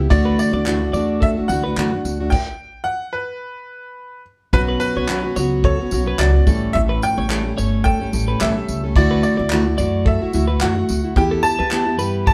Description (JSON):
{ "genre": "acoustic pop", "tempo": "108 BPM", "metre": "4/4", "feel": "swing 55% on 16ths", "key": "B minor", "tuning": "A4 = 440 Hz", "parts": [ { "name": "fingerpicked plugged-in steel-string acoustic guitar", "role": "accompaniment", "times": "0.0-12.3 s", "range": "A2 to A4", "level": "-23 LUFS", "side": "equal", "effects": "none" }, { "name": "upright bass", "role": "bass", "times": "0.0-12.3 s", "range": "G1 to G2", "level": "-24 LUFS", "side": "equal", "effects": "none" }, { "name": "bright upright piano", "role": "melody", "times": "0.1-12.3 s", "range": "B4 to A5", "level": "-26 LUFS", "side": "equal", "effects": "none" }, { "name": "cloth-damped thuddy drum kit", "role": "drums", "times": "0.1-12.3 s", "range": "crash cymbal, handclaps, kick drum, tambourine", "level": "-24 LUFS", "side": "equal", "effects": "none" }, { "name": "twelve-string electric guitar", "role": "arpeggios", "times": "0.3-12.3 s", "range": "G4 to D5", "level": "-30 LUFS", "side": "equal", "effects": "none" } ], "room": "wet studio reverb, RT60 0.9 s", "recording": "band playing live in one room", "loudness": "-19 LUFS", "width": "mono", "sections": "0.0-4.5 A section; 4.5-12.3 A section", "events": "stop 2.3-4.5", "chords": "0.1 Dadd9; 2.3 N.C.; 4.5 Bsus2; 6.5 A7; 9.0 Dadd9; 11.2 Em", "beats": "| 0.10 0.66 1.21 1.76 | 2.31 2.87 3.42 3.98 | 4.53 5.08 5.64 6.19 | 6.74 7.29 7.85 8.40 | 8.95 9.51 10.06 10.61 | 11.16 11.72 12.27" }